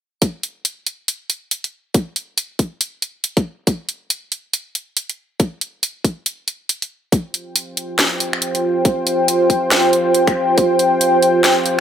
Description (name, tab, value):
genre	deep dubstep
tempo	139 BPM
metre	4/4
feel	swing 60% on 16ths, half-time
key	unclear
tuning	A4 = 441 Hz
part	electronic kick drum	drums	0.2-10.7 s	none	-17 LUFS	left 1 dB	high-pass filter on kick
part	garage drum kit	drums	0.2-11.8 s	finger snaps, hi-hat, snare drum	-18 LUFS	equal	high-pass filter on hats, high-pass filter on snare
part	dark analog pad	sustained chords	7.9-11.8 s	F4 to G5	-15 LUFS	equal	chorus
room	moderate spring reverb, RT60 1.3 s, digital ambience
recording	none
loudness	-16 LUFS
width	side -9 dB against mid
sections	0.2-7.1 A section; 7.1-11.8 B section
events	kick drops out 6.7-7.1; build-up 7.1-11.8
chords	0.2 N.C.; 7.1 F5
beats	| 0.22 0.65 1.08 1.51 | 1.95 2.38 2.81 3.24 | 3.67 4.10 4.54 4.97 | 5.40 5.83 6.26 6.69 | 7.12 7.56 7.99 8.42 | 8.85 9.28 9.71 10.15 | 10.58 11.01 11.44